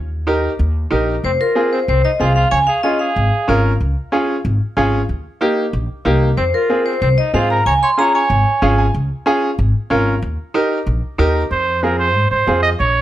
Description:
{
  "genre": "latin",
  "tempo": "187 BPM",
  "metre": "4/4",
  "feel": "straight",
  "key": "F minor",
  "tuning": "A4 = 439 Hz",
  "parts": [
    { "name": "upright bass", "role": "bass", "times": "0.0-13.0 s", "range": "F1 to Ab2", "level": "-17 LUFS", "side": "equal", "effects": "none" },
    { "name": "bright upright piano", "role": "accompaniment", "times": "0.3-12.7 s", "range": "Bb3 to Ab5", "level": "-18 LUFS", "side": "right 1 dB", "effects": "none" },
    { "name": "vibraphone with medium hard mallets", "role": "melody", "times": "1.2-3.6, 6.4-8.7 s", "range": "Bb4 to C6", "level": "-16 LUFS", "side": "left 1 dB", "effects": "plate reverb" },
    { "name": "clear trumpet", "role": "second line", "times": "1.2-3.6, 6.4-8.7, 11.5-13.0 s", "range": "C4 to Eb5", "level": "-20 LUFS", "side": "right 3 dB", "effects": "none" }
  ],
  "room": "light reverb",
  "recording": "none",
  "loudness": "-14 LUFS",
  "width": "side -13 dB against mid",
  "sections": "0.0-1.2 A section; 1.2-11.5 B section; 11.5-13.0 C section",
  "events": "upright piano fill 8.5-8.9; trumpet solo 11.5-13.0",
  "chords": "0.0 Eb; 1.2 Fm; 2.5 Db; 5.1 Eb; 6.4 Fm; 7.7 Db; 10.2 Eb; 11.5 Fm",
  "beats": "0.27 0.59 0.91 | 1.24 1.56 1.88 2.20 | 2.52 2.84 3.16 3.48 | 3.81 4.13 4.45 4.77 | 5.09 5.41 5.73 6.05 | 6.37 6.70 7.02 7.34 | 7.66 7.98 8.30 8.62 | 8.94 9.26 9.58 9.90 | 10.22 10.55 10.87 11.19 | 11.51 11.83 12.15 12.47 | 12.80"
}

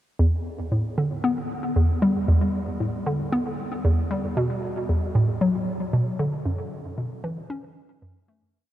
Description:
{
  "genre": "ambient",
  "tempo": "115 BPM",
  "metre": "4/4",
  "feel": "straight",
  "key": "E dorian",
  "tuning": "A4 = 440 Hz",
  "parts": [
    { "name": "hollow square pluck", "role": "solo", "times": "0.2-8.5 s", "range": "E2 to C#4", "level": "-22 LUFS", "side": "equal", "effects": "chorus, tape echo" }
  ],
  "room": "wet huge ambient reverb, RT60 7.0 s",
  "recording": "dreamy mix soaked in reverb, cassette tape",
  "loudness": "-22 LUFS",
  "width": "side -13 dB against mid",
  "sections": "0.2-8.5 A section",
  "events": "fade-out 5.8-8.5",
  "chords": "none",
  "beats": "| 0.19 0.72 1.24 1.76 | 2.28 2.80 3.33 3.85 | 4.37 4.89 5.41 5.93 | 6.46 6.98 7.50 8.02"
}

